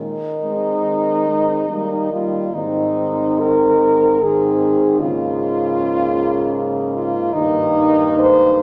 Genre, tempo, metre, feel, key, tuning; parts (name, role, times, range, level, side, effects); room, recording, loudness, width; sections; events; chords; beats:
classical, lyrical piece for horn quartet; 66-78 BPM; 3/4; rubato; Ab major; A4 = 436 Hz
clear French horn; melody; 0.0-8.6 s; Eb4 to C5; -20 LUFS; equal
mellow French horn; bass; 0.0-8.6 s; G2 to Eb3; -28 LUFS; equal
warm French horn; second line; 0.4-8.6 s; Bb3 to C4; -29 LUFS; equal
dark French horn; accompaniment; 0.4-8.6 s; Db3 to Ab3; -23 LUFS; equal
wet scoring stage reverb, RT60 1.7 s; -17 LUFS; mono
0.0-2.5 A section; 2.5-8.6 B section
0.0 Ab/Eb; 1.7 Eb; 2.5 Ab; 5.0 Bbm7/Ab; 7.4 Eb/G
0.84 1.70 | 2.54 3.42 4.23 | 5.02 5.79 6.57 | 7.35 8.20